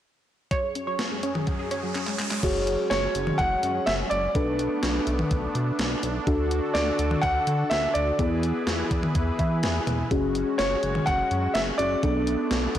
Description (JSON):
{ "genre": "synth-pop", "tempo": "125 BPM", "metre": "4/4", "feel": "straight", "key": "F# minor", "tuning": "A4 = 440 Hz", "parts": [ { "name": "funky polysynth comp", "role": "second line", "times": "0.5-1.8 s", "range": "C#5", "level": "-33 LUFS", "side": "right 2 dB", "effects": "chorus, phaser, digital delay, shimmer reverb" }, { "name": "brassy analog pad", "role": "sustained chords", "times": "0.5-12.8 s", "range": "F#2 to B4", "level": "-33 LUFS", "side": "right 1 dB", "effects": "chorus, low-pass filter, shimmer reverb" }, { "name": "wide unison pluck", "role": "arpeggios", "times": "0.5-2.4 s", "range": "F#3 to G#4", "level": "-34 LUFS", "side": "equal", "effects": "analog chorus, low-pass filter, digital delay" }, { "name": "gated 80s digital drum machine", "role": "drums", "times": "0.5-12.8 s", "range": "crash cymbal, handclaps, hi-hat, kick drum, snare drum, toms", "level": "-29 LUFS", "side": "equal", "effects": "gated reverb, gated reverb snare, overdrive" }, { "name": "riser", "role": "sound effects", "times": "1.0-2.4 s", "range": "none", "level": "-38 LUFS", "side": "right 2 dB", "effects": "none" }, { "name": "muted felt-like synth keys", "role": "accompaniment", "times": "2.4-12.8 s", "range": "B3 to G#5", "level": "-28 LUFS", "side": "left 1 dB", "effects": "chorus, shimmer reverb" }, { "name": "chorused synth bass", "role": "bass", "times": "2.4-12.8 s", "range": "F#1 to E3", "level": "-29 LUFS", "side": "equal", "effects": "none" }, { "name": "clear baby grand piano", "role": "melody", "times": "2.9-12.8 s", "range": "C#5 to F#5", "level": "-27 LUFS", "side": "equal", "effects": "digital delay, shimmer reverb" } ], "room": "moderate lush hall reverb, RT60 2.6 s", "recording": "blown-out, overdriven recording, overdrive", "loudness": "-23 LUFS", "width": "side -11 dB against mid", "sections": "0.5-2.4 A section; 2.4-12.8 B section", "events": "filter sweep 0.5-2.4; riser 1.0-2.4; drum fill 1.9-2.4; synth keys fill 9.2-10.1", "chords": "0.5 F#sus2; 4.3 Bm7; 6.3 D; 8.2 E; 10.1 F#sus2; 12.0 Bm7" }